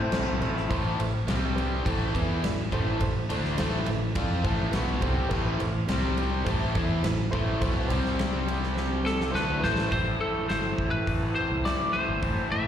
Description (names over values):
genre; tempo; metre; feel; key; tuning
classic rock; 104 BPM; 4/4; straight; A minor; A4 = 440 Hz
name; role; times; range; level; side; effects
lightly driven lead guitar; melody; 0.0-0.4, 9.1-12.7 s; A4 to E5; -29 LUFS; left 2 dB; plate reverb, slapback echo, analog delay
reed electric piano; accompaniment; 0.0-9.8 s; C4 to D5; -35 LUFS; right 2 dB; fast tremolo, plate reverb, slapback echo
biting overdriven guitar; riff; 0.0-9.9 s; A2 to F4; -35 LUFS; right 1 dB; slapback echo
crunchy overdriven guitar; riff; 0.0-12.7 s; A2 to A4; -33 LUFS; left 9 dB; slapback echo
tight distorted guitar; riff; 0.0-12.7 s; A2 to A4; -35 LUFS; right 10 dB; distortion, slapback echo
fingered electric bass; bass; 0.0-12.7 s; G1 to A2; -29 LUFS; equal; none
huge arena drum kit; drums; 0.1-12.4 s; crash cymbal, hi-hat, kick drum, ride cymbal, snare drum; -31 LUFS; equal; none
room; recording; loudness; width
light reverb; live gig heard through the venue's PA, recital hall reverb; -24 LUFS; side -9 dB against mid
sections
0.7-9.9 A section; 9.9-12.7 B section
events
drum fill 8.8-9.9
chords
0.0 Am; 1.3 C5; 1.9 Am; 5.9 C5; 6.5 Am; 7.9 C5; 9.3 Am; 9.9 Am7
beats
0.13 | 0.71 1.28 1.86 2.44 | 3.01 3.59 4.17 4.74 | 5.32 5.89 6.47 7.05 | 7.62 8.20 8.77 9.35 | 9.92 10.50 11.07 11.65 | 12.23